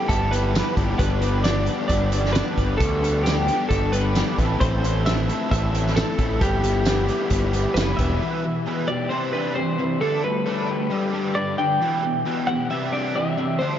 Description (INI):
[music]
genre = indie rock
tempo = 133 BPM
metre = 4/4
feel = straight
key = unclear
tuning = A4 = 439 Hz
[part]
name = twelve-string electric guitar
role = melody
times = 0.0-13.8 s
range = G4 to G5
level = -25 LUFS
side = equal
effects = lush chorus, tape echo
[part]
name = biting overdriven guitar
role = riff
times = 0.0-13.8 s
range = E2 to A4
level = -28 LUFS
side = right 5 dB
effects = ensemble chorus
[part]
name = crunchy overdriven guitar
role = riff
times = 0.0-13.8 s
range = C3 to B4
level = -27 LUFS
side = left 6 dB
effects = none
[part]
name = growling fingered electric bass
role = bass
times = 0.1-8.2 s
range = E1 to D2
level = -23 LUFS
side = equal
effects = overdrive
[part]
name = loose indie drum kit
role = drums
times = 0.1-8.1 s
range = hi-hat, kick drum, snare drum, tambourine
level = -25 LUFS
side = right 1 dB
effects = none
[sound]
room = moderate huge ambient reverb, RT60 4.2 s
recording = dreamy mix soaked in reverb, nothing above 7.5 kHz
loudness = -20 LUFS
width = side -10 dB against mid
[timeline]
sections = 0.0-8.2 A section; 8.2-13.8 B section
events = none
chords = 0.0 Em/G; 1.0 G; 4.4 Am; 6.4 Em/G; 8.2 Em; 9.1 Cadd9; 10.0 Dsus4; 10.9 G; 11.8 Em; 12.7 Cadd9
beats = 0.10 0.55 | 1.00 1.45 1.90 2.35 | 2.81 3.26 3.71 4.16 | 4.61 5.06 5.51 5.96 | 6.41 6.86 7.31 7.76 | 8.21 8.66 9.11 9.56 | 10.01 10.46 10.91 11.36 | 11.81 12.26 12.71 13.16 | 13.61